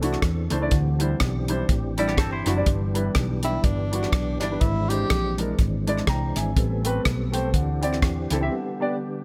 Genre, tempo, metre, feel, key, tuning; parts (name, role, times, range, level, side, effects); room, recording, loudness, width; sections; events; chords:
uptempo gospel; 123 BPM; 4/4; swing 58% on 8ths; G major; A4 = 440 Hz
warm baby grand piano; accompaniment; 0.0-9.2 s; G2 to Bb5; -30 LUFS; equal
tonewheel organ; sustained chords; 0.0-9.2 s; D3 to A4; -34 LUFS; equal; slow rotary speaker, overdrive, chorus vibrato
hollow-body short-scale fingered electric bass; bass; 0.0-8.5 s; F#1 to E2; -28 LUFS; equal
tight funk drum kit; drums; 0.0-8.4 s; hi-hat, kick drum, rim click; -27 LUFS; equal
semi-hollow electric guitar; second line; 2.0-2.7 s; G3 to C5; -34 LUFS; equal
breathy tenor saxophone; melody; 3.4-5.4 s; D4 to G4; -31 LUFS; equal
little or no reverb; -24 LUFS; mono
0.0-9.2 A section
break 8.5-9.2
0.0 C69; 0.7 D9sus4; 2.7 G6; 4.6 E7alt/G#; 6.6 Am9; 7.5 D9sus4; 8.5 G/D